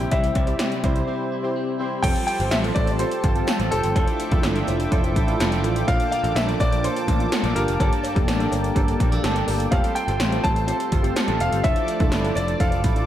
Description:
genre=1980s-style pop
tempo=125 BPM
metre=4/4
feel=straight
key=F major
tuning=A4 = 440 Hz
part: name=clear baby grand piano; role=melody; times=0.0-13.1 s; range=A4 to A5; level=-27 LUFS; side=left 1 dB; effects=diffuse ambient delay
part: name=warm analog keys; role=accompaniment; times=0.0-13.1 s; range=G2 to D5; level=-27 LUFS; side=equal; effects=chorus
part: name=brassy analog pad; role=sustained chords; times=0.0-13.1 s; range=C3 to D6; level=-31 LUFS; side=left 1 dB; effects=chorus, tremolo
part: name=clean electric guitar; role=riff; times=0.0-13.1 s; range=F3 to A4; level=-32 LUFS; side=right 3 dB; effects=wide subtle chorus, diffuse ambient delay
part: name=modern bright picked electric bass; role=bass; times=0.0-13.0 s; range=E1 to C2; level=-25 LUFS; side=equal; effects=none
part: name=80s electronic pad drums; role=drums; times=0.0-13.1 s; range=crash cymbal, hi-hat, kick drum, snare drum, tambourine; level=-23 LUFS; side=equal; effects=none
part: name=cowbell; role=percussion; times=0.1-12.7 s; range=none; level=-38 LUFS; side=left 2 dB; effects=none
part: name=mellow synth brass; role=stabs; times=2.0-13.1 s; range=F3 to A5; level=-33 LUFS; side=equal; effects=none
room=moderate lush hall reverb, RT60 1.8 s, digital ambience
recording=dreamy mix soaked in reverb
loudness=-19 LUFS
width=side -11 dB against mid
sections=0.0-2.0 A section; 2.0-13.1 B section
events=break 1.1-2.0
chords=0.0 C; 2.0 Fadd9; 4.0 Dmadd9; 5.9 Bbmaj7; 7.8 Gmadd9; 9.7 Fadd9; 11.6 Dmadd9

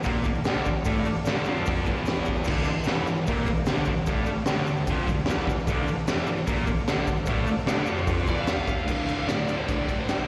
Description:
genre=garage rock duo or trio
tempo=150 BPM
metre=4/4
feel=straight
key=D minor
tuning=A4 = 440 Hz
part: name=thick fuzz guitar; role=riff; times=0.0-10.3 s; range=D2 to Bb3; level=-29 LUFS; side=equal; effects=distortion
part: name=tube shaker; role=percussion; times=0.0-10.2 s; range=none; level=-51 LUFS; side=equal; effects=none
part: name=combo organ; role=sustained chords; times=0.1-10.3 s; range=A4 to A5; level=-37 LUFS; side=equal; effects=plate reverb
part: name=raw garage drum kit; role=drums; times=0.1-10.2 s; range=crash cymbal, hi-hat, kick drum, ride cymbal, snare drum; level=-29 LUFS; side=equal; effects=none
part: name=overdriven slide guitar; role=melody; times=8.3-10.3 s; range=C5 to F5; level=-35 LUFS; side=equal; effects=plate reverb
room=moderate club reverb, RT60 0.6 s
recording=live gig heard through the venue's PA, cassette tape, recital hall reverb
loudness=-26 LUFS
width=mono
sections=0.0-8.9 A section; 8.9-10.3 B section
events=transistor combo organ fill 4.5-5.7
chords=0.0 Dm

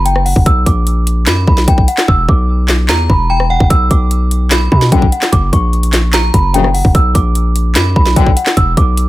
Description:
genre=hip hop, trap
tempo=148 BPM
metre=4/4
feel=half-time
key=B harmonic minor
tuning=A4 = 439 Hz
part: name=metallic FM bell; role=second line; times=0.0-8.1 s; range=G5 to B5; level=-23 LUFS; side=right 4 dB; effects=chorus, ping-pong delay
part: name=distorted 808-style bass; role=bass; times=0.0-9.1 s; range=E1 to B2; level=-13 LUFS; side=equal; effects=distortion
part: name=celesta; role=melody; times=0.1-9.1 s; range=F#5 to E6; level=-17 LUFS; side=equal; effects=low-pass filter
part: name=trap drum kit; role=drums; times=0.1-9.1 s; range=handclaps, hi-hat, kick drum, rim click, snare drum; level=-12 LUFS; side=equal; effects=none
part: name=clear brass ensemble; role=stabs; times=4.9-8.3 s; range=A#1 to D3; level=-17 LUFS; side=left 7 dB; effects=none
room=little or no reverb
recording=none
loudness=-9 LUFS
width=side -16 dB against mid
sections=0.0-9.1 A section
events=hi-hats muted 2.1-3.7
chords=0.5 Bm; 2.1 E5; 3.7 Bm; 5.3 F#; 6.9 Bm; 8.6 E5

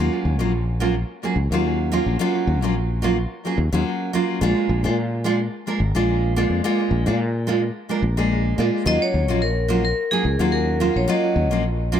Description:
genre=sunset chillout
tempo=108 BPM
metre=4/4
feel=swing 53% on 16ths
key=Eb minor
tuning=A4 = 438 Hz
part: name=nylon-string guitar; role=accompaniment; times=0.0-12.0 s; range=Gb3 to Bb4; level=-21 LUFS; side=right 1 dB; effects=auto-pan, analog delay
part: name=sustaining fretless electric bass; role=bass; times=0.0-12.0 s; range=Ab1 to Bb2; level=-22 LUFS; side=equal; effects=none
part: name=vibraphone with hard mallets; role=melody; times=8.9-11.6 s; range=Ab4 to Eb5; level=-23 LUFS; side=left 3 dB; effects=vintage 12-bit sampler grit, analog delay
room=moderate spring reverb, RT60 1.2 s, small room ambience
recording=echo-heavy mix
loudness=-19 LUFS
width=side -9 dB against mid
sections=0.0-12.0 A section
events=none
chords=0.0 Ebm7; 4.4 Bb7; 8.9 Ebm7

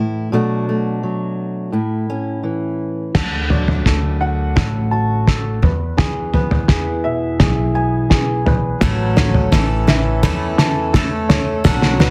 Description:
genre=indie folk with a building arrangement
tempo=85 BPM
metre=4/4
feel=straight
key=A major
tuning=A4 = 438 Hz
part: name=fingerpicked steel-string acoustic guitar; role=accompaniment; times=0.0-11.3 s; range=E2 to F#4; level=-24 LUFS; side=equal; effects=none
part: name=dark upright piano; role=arpeggios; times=3.1-12.1 s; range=G#4 to A5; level=-26 LUFS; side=equal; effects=none
part: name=cloth-damped thuddy drum kit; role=drums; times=3.1-12.1 s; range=crash cymbal, kick drum, snare drum, toms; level=-18 LUFS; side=equal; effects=soft clipping on kick
part: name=upright bass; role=bass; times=3.2-12.1 s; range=A1 to E2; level=-23 LUFS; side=equal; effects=none
part: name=warm trombone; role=second line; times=8.8-12.1 s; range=E3 to A3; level=-26 LUFS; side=equal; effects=none
part: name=picked twelve-string acoustic guitar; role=accompaniment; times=8.8-12.1 s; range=A2 to A4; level=-28 LUFS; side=equal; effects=none
room=light reverb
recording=dense, heavily limited modern master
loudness=-17 LUFS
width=mono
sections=0.0-3.2 A section; 3.2-12.1 B section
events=build-up 3.2-12.1; drum fill 3.2-12.1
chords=0.3 Bm7; 1.7 A; 3.2 D; 5.6 E; 8.8 A

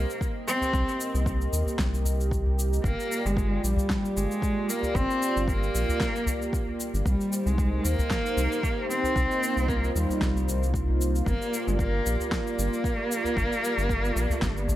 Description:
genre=organic downtempo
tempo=114 BPM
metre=4/4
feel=swing 54% on 16ths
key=C minor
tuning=A4 = 440 Hz
part: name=warm cello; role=melody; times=0.0-14.8 s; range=G3 to C4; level=-28 LUFS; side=equal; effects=tape echo
part: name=warm analog pad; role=sustained chords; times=0.0-14.8 s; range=Bb3 to Eb5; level=-32 LUFS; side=right 1 dB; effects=chorus, sidechain pumping
part: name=round analog bass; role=bass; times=0.0-14.8 s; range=G1 to Eb2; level=-27 LUFS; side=equal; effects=sidechain pumping
part: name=electronic cabasa and snare drum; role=drums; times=0.1-14.8 s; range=none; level=-35 LUFS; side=left 1 dB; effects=small room ambience
part: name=electronic kick drum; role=drums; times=0.2-14.5 s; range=none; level=-30 LUFS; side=equal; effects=small room ambience
part: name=udu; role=percussion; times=0.6-14.8 s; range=none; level=-31 LUFS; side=left 1 dB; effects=none
room=light reverb, digital ambience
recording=none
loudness=-24 LUFS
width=side -14 dB against mid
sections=0.0-14.8 A section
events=none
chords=0.0 Cm7; 2.8 Gm7; 7.1 Cm7; 11.3 Gm7

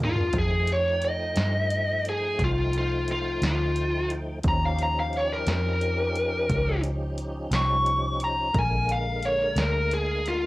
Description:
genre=slow blues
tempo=58 BPM (dotted quarters)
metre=12/8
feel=straight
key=unclear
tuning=A4 = 440 Hz
part: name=biting lead guitar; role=melody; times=0.0-10.5 s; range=F4 to Db6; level=-26 LUFS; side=left 1 dB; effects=overdrive, cassette tape
part: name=tonewheel organ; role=sustained chords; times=0.0-10.5 s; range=D3 to G5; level=-34 LUFS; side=equal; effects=overdrive, chorus vibrato, slow rotary speaker, cassette tape
part: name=vintage muted fingered electric bass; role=bass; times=0.0-10.5 s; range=Bb1 to G2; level=-28 LUFS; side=equal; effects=none
part: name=punchy analog drum machine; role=drums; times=0.2-10.4 s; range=hi-hat, kick drum, snare drum, toms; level=-30 LUFS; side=equal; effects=cassette tape
room=light reverb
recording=home recording on cassette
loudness=-23 LUFS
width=side -18 dB against mid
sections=0.0-10.5 A section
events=drum fill 0.0-0.3; lead electric guitar solo 0.0-10.5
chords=0.3 F9; 4.4 Eb9; 8.5 Bb7

